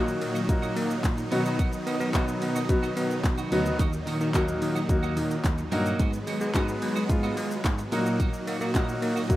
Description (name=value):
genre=dance-pop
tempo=109 BPM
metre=4/4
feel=straight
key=Eb minor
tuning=A4 = 440 Hz
part: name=warm grand piano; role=accompaniment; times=0.0-9.4 s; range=Gb3 to Gb4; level=-30 LUFS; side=left 1 dB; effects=sidechain pumping
part: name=supersaw chords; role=sustained chords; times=0.0-9.4 s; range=Bb2 to Gb4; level=-31 LUFS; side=equal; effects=sidechain pumping
part: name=twelve-string electric guitar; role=riff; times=0.0-9.3 s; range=Bb3 to Gb4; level=-37 LUFS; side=right 7 dB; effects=lush chorus
part: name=bell-like tine electric piano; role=bass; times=0.0-9.4 s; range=D2 to B3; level=-30 LUFS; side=equal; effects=sidechain pumping
part: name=pop drum kit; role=drums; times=0.1-9.4 s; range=handclaps, hi-hat, kick drum, shaker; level=-28 LUFS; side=equal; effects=none
room=light reverb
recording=rough home demo mix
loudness=-24 LUFS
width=side -15 dB against mid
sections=0.0-9.4 A section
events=none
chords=0.0 Ebm/Bb; 1.3 B; 3.8 Ebm; 6.0 Abm7; 7.9 Ebm/Bb